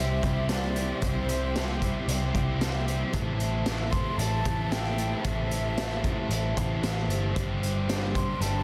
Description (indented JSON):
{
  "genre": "rock, shoegaze and dream pop",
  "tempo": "114 BPM",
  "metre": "4/4",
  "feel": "straight",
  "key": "unclear",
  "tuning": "A4 = 440 Hz",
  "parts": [
    { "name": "mellow jazz flute", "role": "melody", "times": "0.0-8.6 s", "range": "C5 to C6", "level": "-38 LUFS", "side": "equal", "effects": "analog delay" },
    { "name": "sweeping resonant pad", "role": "sustained chords", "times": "0.0-8.6 s", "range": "G4 to C6", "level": "-41 LUFS", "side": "equal", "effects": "chorus" },
    { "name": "biting overdriven guitar", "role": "riff", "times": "0.0-8.6 s", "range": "G2 to A4", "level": "-36 LUFS", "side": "equal", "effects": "reverse reverb" },
    { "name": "thick fuzz guitar", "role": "riff", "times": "0.0-8.6 s", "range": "G2 to C4", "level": "-38 LUFS", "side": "equal", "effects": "distortion, subtle chorus" },
    { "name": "vintage muted picked electric bass", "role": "bass", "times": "0.0-8.6 s", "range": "G1 to C2", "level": "-32 LUFS", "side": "equal", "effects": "none" },
    { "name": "raw garage drum kit", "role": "drums", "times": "0.2-8.5 s", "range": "hi-hat, kick drum, snare drum", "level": "-34 LUFS", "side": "equal", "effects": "none" }
  ],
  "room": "light reverb",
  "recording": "dense, heavily limited modern master",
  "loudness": "-28 LUFS",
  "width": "mono",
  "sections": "0.0-8.6 A section",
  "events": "none",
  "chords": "0.0 C; 3.1 Am7; 7.4 Gsus4"
}